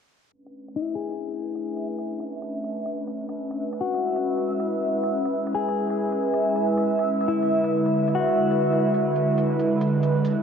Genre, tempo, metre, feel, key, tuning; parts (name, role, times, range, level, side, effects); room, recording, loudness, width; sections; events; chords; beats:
future garage; 138 BPM; 4/4; swing 64% on 16ths; B dorian; A4 = 436 Hz
airy breathy pad; sustained chords; 0.3-10.4 s; D3 to B4; -25 LUFS; right 2 dB; chorus, cassette tape
backwards swelling texture; texture; 1.8-10.4 s; E5; -28 LUFS; right 2 dB; built-in reverb, cassette tape
electronic hi-hat; drums; 0.5-10.3 s; -51 LUFS; right 2 dB
clean electric guitar; accompaniment; 0.8-9.6 s; E4 to G#4; -27 LUFS; left 8 dB; low-pass filter, cassette tape, analog delay
light reverb, digital ambience; home recording on cassette, low-pass filter; -22 LUFS; side -7 dB against mid
0.3-10.4 A section
fade-in on analog synth pad 0.3-10.4; filter sweep on clean electric guitar 0.3-10.4; filter sweep 0.3-10.4
0.3 Bm9; 3.8 C#m7; 7.3 E7
| 0.33 0.76 1.20 1.63 | 2.06 2.50 2.93 3.37 | 3.80 4.24 4.67 5.11 | 5.54 5.98 6.41 6.85 | 7.28 7.72 8.15 8.59 | 9.02 9.46 9.89 10.33